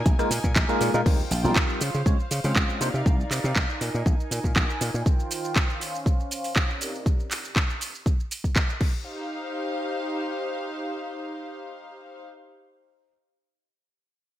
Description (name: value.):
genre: filtered disco house.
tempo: 120 BPM.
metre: 4/4.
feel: swing 53% on 16ths.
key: Eb major.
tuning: A4 = 441 Hz.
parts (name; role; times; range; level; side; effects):
warm studio string section; sustained chords; 0.0-12.2 s; C3 to Ab5; -32 LUFS; equal; vintage 12-bit sampler grit, sidechain pumping, low-pass filter.
dry thumbed slap bass; bass; 0.1-5.0 s; Bb1 to Db3; -27 LUFS; equal; tube saturation, sidechain pumping, low-pass filter.
electronic kick drum; drums; 0.1-8.9 s; none; -23 LUFS; equal; none.
house drum kit; drums; 0.1-8.9 s; crash cymbal, handclaps, hi-hat, rim click, shaker; -28 LUFS; right 1 dB; sidechain pumping on hats, sidechain pumping on perc, sidechain pumping on cymbals, gated reverb.
barky tine electric piano; accompaniment; 0.2-2.9 s; G3 to Db5; -27 LUFS; equal; phaser, sidechain pumping, low-pass filter.
room: light reverb.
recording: bright 1980s-style digital production.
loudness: -23 LUFS.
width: side -13 dB against mid.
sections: 0.0-1.1 A section; 1.1-9.1 B section; 9.1-13.1 C section.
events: drop 0.0-1.1; filter sweep 1.1-9.1.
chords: 0.0 Bb7sus4; 1.1 Eb69; 1.8 Dbmaj7; 2.8 Cm11; 3.8 Bb7sus4; 5.1 Eb69; 5.8 Dbmaj7; 6.8 Cm11; 7.8 N.C.; 8.8 Eb69.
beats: 0.06 0.56 | 1.06 1.56 2.06 2.56 | 3.06 3.56 4.06 4.56 | 5.06 5.56 6.06 6.56 | 7.06 7.56 8.06 8.56 | 9.06 9.56 10.06 10.56 | 11.06 11.56 12.06.